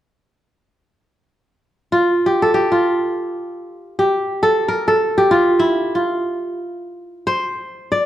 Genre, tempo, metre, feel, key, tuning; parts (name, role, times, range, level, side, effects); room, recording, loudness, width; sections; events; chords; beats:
west african traditional; free time; F major; A4 = 440 Hz
kora; arpeggios; 1.9-8.1 s; E4 to D5; -16 LUFS; equal
moderate recital hall reverb, RT60 1.6 s; dark, warm production; -15 LUFS; side -12 dB against mid
1.7-8.1 A section
kora solo 1.7-8.1
free time